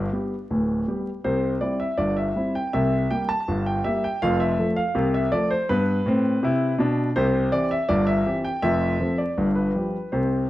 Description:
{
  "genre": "ragtime piano",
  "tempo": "81 BPM",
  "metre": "2/4",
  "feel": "straight",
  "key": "C major",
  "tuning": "A4 = 441 Hz",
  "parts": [
    { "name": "warm grand piano", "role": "solo", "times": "0.0-10.5 s", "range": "D1 to A5", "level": "-21 LUFS", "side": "equal", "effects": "slapback echo" }
  ],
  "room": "small room ambience",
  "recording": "dry, close 1970s-style studio recording, vinyl crackle",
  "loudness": "-21 LUFS",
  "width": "side -15 dB against mid",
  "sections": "0.0-10.5 A section",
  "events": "none",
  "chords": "0.0 G; 1.2 C; 2.7 C5; 4.2 F; 5.7 G; 7.2 C; 8.6 F; 9.4 G7",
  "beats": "0.49 | 1.24 1.98 | 2.72 3.46 | 4.20 4.94 | 5.68 6.42 | 7.16 7.89 | 8.63 9.37 | 10.12"
}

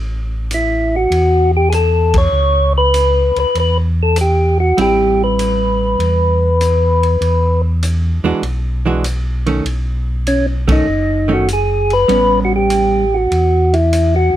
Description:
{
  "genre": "soul jazz organ trio",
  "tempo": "98 BPM",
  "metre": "4/4",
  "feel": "swing 69% on 8ths",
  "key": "unclear",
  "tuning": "A4 = 441 Hz",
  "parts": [
    { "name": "mellow tonewheel organ", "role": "bass", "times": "0.0-14.4 s", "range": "F#1 to E2", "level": "-16 LUFS", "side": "equal", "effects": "slow rotary speaker" },
    { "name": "percussive tonewheel organ", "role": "melody", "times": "0.5-14.4 s", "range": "C#4 to C#5", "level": "-14 LUFS", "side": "left 1 dB", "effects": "slow rotary speaker" },
    { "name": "vintage drum kit", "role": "drums", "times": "0.5-14.1 s", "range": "hi-hat, kick drum, ride cymbal", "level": "-24 LUFS", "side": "equal", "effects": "none" },
    { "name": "archtop guitar, miked and amplified", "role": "accompaniment", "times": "4.8-13.0 s", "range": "D#3 to F#4", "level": "-18 LUFS", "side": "right 4 dB", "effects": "none" }
  ],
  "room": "light reverb",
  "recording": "none",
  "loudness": "-12 LUFS",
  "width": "side -12 dB against mid",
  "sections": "0.0-14.4 A section",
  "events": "band accent 2.0-2.3, 10.6-10.9",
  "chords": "0.0 Aadd9; 4.8 Am7; 7.2 E9; 9.7 B9; 12.1 A9",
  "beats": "0.51 1.11 1.73 | 2.33 2.94 3.56 4.17 | 4.78 5.38 6.00 6.61 | 7.21 7.83 8.44 9.04 | 9.65 10.27 10.88 11.48 | 12.10 12.71 13.31 13.93"
}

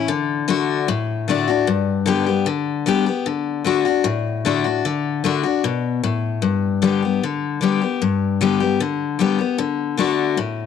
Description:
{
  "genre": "rock",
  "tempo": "152 BPM",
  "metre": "4/4",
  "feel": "straight",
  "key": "D major",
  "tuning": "A4 = 440 Hz",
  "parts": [
    { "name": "picked steel-string acoustic guitar", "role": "solo", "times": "0.0-10.7 s", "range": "G2 to G4", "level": "-18 LUFS", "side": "left 7 dB", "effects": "none" }
  ],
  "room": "light reverb, small room ambience",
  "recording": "none",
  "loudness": "-18 LUFS",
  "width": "side -7 dB against mid",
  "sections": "0.1-10.7 A section",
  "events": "none",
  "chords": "0.1 D; 1.7 G; 3.3 D; 6.4 G; 9.6 D",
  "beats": "| 0.10 0.50 0.90 1.29 | 1.69 2.09 2.48 2.88 | 3.28 3.67 4.07 4.47 | 4.86 5.26 5.65 6.05 | 6.45 6.84 7.24 7.63 | 8.03 8.42 8.81 9.21 | 9.60 10.00 10.39"
}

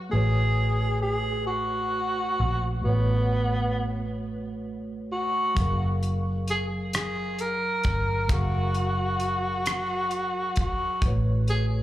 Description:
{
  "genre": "slow six-eight R&B",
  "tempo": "44 BPM (dotted quarters)",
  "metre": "6/8",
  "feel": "straight",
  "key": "unclear",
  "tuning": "A4 = 440 Hz",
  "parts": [
    { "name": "mellow tine electric piano", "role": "accompaniment", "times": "0.0-11.8 s", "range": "F#3 to E#5", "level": "-34 LUFS", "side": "right 1 dB", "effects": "medium stereo tremolo, slapback echo" },
    { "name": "vintage muted fingered electric bass", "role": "bass", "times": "0.0-11.8 s", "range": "F#1 to A#1", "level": "-26 LUFS", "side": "equal", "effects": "none" },
    { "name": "breathy tenor saxophone", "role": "melody", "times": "0.1-11.7 s", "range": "B3 to A#4", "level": "-28 LUFS", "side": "equal", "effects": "slapback echo" },
    { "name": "damped 70s drum kit", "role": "drums", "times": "5.6-11.7 s", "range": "hi-hat, kick drum, rim click", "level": "-28 LUFS", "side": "equal", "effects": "none" }
  ],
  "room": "small room ambience",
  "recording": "live gig heard through the venue's PA, club reverb",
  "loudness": "-24 LUFS",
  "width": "side -14 dB against mid",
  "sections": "0.0-11.8 A section",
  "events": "none",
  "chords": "0.1 A69; 5.6 F#maj9; 11.0 A69",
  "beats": "| 0.11 1.47 | 2.84 4.20 | 5.57 6.93 | 8.29 9.66 | 11.02"
}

